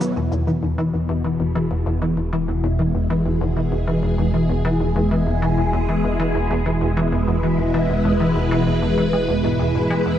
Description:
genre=ambient, sequencer-driven space music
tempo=97 BPM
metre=4/4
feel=straight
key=E major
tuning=A4 = 439 Hz
part: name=phased string machine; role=sustained chords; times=0.0-10.2 s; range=B2 to B4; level=-21 LUFS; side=equal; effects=ensemble chorus, phaser
part: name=resonant blip pluck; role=riff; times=0.0-10.2 s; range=E2 to B3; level=-21 LUFS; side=left 1 dB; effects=lush chorus, cassette tape, tape echo
part: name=round analog bass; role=bass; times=0.2-10.2 s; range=E1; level=-28 LUFS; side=equal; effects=none
room=moderate plate reverb, RT60 2.9 s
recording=none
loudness=-18 LUFS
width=side -10 dB against mid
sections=0.2-10.2 A section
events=none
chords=0.2 E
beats=| 0.16 0.78 1.40 2.02 | 2.64 3.26 3.88 4.49 | 5.11 5.73 6.35 6.97 | 7.59 8.21 8.82 9.44 | 10.06

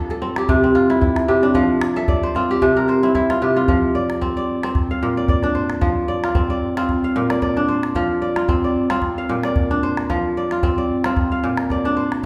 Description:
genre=west african traditional, West African string and xylophone music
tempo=112 BPM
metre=4/4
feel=swing 55% on 16ths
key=F major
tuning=A4 = 440 Hz
part: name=kora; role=arpeggios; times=0.0-12.3 s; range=Bb2 to F5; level=-20 LUFS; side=equal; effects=none
part: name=calabash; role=percussion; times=0.1-12.2 s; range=none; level=-26 LUFS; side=equal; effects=none
room=wet recital hall reverb, RT60 1.5 s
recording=heard from further back in the room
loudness=-19 LUFS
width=mono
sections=0.0-3.7 A section; 3.7-12.3 B section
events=kora fill 2.0-3.7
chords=0.5 C; 1.6 F; 2.6 C; 3.7 F5; 4.8 Bb; 5.8 F5; 6.9 Bb; 8.0 F5; 9.0 Bb; 10.1 F5; 11.2 Bb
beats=0.49 1.02 | 1.55 2.08 2.62 3.15 | 3.69 4.22 4.75 5.29 | 5.82 6.35 6.89 7.42 | 7.96 8.49 9.03 9.56 | 10.09 10.63 11.16 11.70 | 12.23

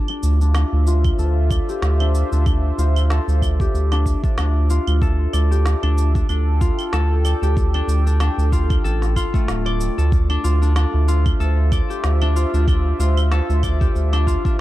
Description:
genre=organic downtempo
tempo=94 BPM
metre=4/4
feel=swing 56% on 16ths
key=D minor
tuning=A4 = 439 Hz
part: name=concert harp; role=arpeggios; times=0.0-14.6 s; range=A3 to D5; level=-25 LUFS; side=left 4 dB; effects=vintage 12-bit sampler grit, low-pass filter, ping-pong delay
part: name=electronic claves, shaker and snare drum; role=drums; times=0.1-14.6 s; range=none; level=-30 LUFS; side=right 2 dB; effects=none
part: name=warm analog pad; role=sustained chords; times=0.2-14.6 s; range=F4 to G5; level=-30 LUFS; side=right 2 dB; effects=chorus, tremolo, sidechain pumping
part: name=round analog bass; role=bass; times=0.2-14.4 s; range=D1 to D2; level=-17 LUFS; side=equal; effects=sidechain pumping
part: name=electronic kick drum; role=drums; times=1.0-14.6 s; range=none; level=-20 LUFS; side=equal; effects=none
room=digital ambience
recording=dark, warm production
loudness=-16 LUFS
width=side -15 dB against mid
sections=0.0-14.6 A section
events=filter sweep on harp 0.0-14.6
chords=0.0 Dm9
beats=0.55 1.19 1.83 | 2.46 3.10 3.74 4.38 | 5.02 5.66 6.29 6.93 | 7.57 8.21 8.85 9.48 | 10.12 10.76 11.40 12.04 | 12.68 13.31 13.95 14.59

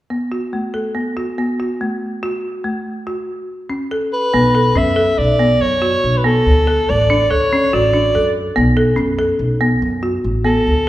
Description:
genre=contemporary instrumental, chamber music in an uneven meter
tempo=142 BPM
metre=5/4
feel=straight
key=B minor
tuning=A4 = 438 Hz
part: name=folk marimba with hard mallets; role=arpeggios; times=0.1-10.7 s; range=A3 to A4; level=-18 LUFS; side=equal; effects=none
part: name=breathy soprano saxophone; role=melody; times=4.1-10.9 s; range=A4 to E5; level=-16 LUFS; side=equal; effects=none
part: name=upright bass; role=bass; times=4.3-10.9 s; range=A1 to F#2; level=-18 LUFS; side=equal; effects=none
room=wet recital hall reverb, RT60 1.7 s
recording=recorded in a church or concert hall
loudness=-14 LUFS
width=side -15 dB against mid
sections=0.1-4.3 A section; 4.3-10.9 B section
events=none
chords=0.1 B5; 2.2 A5; 4.3 Bm9; 6.5 Dmaj7; 8.6 B5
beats=| 0.11 0.54 0.96 1.39 1.81 | 2.23 2.65 3.07 3.49 3.91 | 4.34 4.77 5.19 5.62 6.04 | 6.46 6.89 7.31 7.73 8.14 | 8.56 8.98 9.40 9.82 10.24 | 10.66

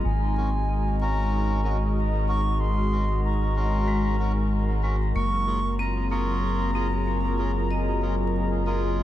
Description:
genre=ambient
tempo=94 BPM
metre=4/4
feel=straight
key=Ab mixolydian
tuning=A4 = 439 Hz
part: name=wooden flute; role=melody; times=0.0-9.0 s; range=Ab5 to Db6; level=-31 LUFS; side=equal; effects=tape echo
part: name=warm analog pad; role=sustained chords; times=0.0-9.0 s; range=Gb3 to Eb5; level=-30 LUFS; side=equal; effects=chorus
part: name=vibraphone with hard mallets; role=arpeggios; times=0.0-9.0 s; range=Ab3 to Eb5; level=-32 LUFS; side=left 3 dB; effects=low-pass filter, tape echo
part: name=soft dub sub bass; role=bass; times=0.0-9.0 s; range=Gb1 to Ab1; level=-25 LUFS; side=equal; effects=tube saturation
part: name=melodica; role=stabs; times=0.4-9.0 s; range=Db4 to Bb4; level=-35 LUFS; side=right 2 dB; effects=dub echo
room=light reverb, small room ambience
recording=dark, warm production, vinyl crackle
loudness=-22 LUFS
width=side -13 dB against mid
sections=0.0-9.0 A section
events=filter sweep on vibraphone 0.0-9.0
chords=0.0 Ab9sus4; 5.2 Gbmaj7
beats=| 0.05 0.69 1.32 1.96 | 2.60 3.24 3.88 4.52 | 5.15 5.79 6.43 7.07 | 7.71 8.35 8.98

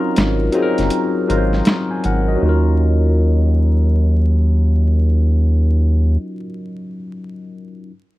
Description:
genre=R&B, neo-soul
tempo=80 BPM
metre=4/4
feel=swing 63% on 16ths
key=Eb dorian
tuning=A4 = 440 Hz
part: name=barky tine electric piano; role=accompaniment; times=0.0-7.9 s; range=Gb3 to Ab5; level=-21 LUFS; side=left 1 dB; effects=overdrive, phaser
part: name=rubbery square bass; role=bass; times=0.2-6.2 s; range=Gb1 to Eb2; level=-14 LUFS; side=equal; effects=none
part: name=boom bap sampler-style drum kit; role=drums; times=0.2-2.3 s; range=hi-hat, snare drum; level=-19 LUFS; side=equal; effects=none
room=digital ambience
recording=dry, close 1970s-style studio recording, vinyl crackle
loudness=-14 LUFS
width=side -17 dB against mid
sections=0.0-2.4 A section; 2.4-5.4 B section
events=break 0.0-2.4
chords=0.0 Ab13; 2.4 Ebm9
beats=0.15 0.90 1.65 | 2.40 3.15 3.90 4.65

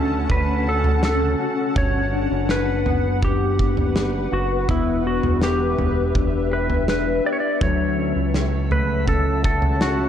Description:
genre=dream pop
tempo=82 BPM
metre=4/4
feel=straight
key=D major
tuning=A4 = 439 Hz
part: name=clean lap steel guitar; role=melody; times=0.0-10.1 s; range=E4 to D5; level=-24 LUFS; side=equal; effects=digital delay
part: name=granular cloud pad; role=sustained chords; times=0.0-10.1 s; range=C#4 to A5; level=-27 LUFS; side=left 1 dB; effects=built-in reverb
part: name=mellow electric guitar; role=arpeggios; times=0.0-10.1 s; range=F#3 to A4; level=-26 LUFS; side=left 6 dB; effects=wide subtle chorus, digital delay
part: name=fat analog bass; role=bass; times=0.0-10.1 s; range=E1 to D2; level=-23 LUFS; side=equal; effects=none
part: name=loose indie drum kit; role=drums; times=0.3-10.0 s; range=kick drum, snare drum, toms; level=-24 LUFS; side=right 1 dB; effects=none
part: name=drifting glass-harmonics texture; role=texture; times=8.3-10.0 s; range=E5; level=-37 LUFS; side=left 4 dB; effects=chorus, built-in reverb, digital delay
room=moderate concert hall reverb, RT60 2.1 s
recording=dark, warm production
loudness=-18 LUFS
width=side -9 dB against mid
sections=0.0-10.1 A section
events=none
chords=0.0 Dmaj7; 1.8 Gmaj7; 4.7 Em7; 7.6 Dmaj7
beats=0.30 1.03 | 1.76 2.49 3.22 3.95 | 4.69 5.42 6.15 6.88 | 7.61 8.34 9.08 9.81

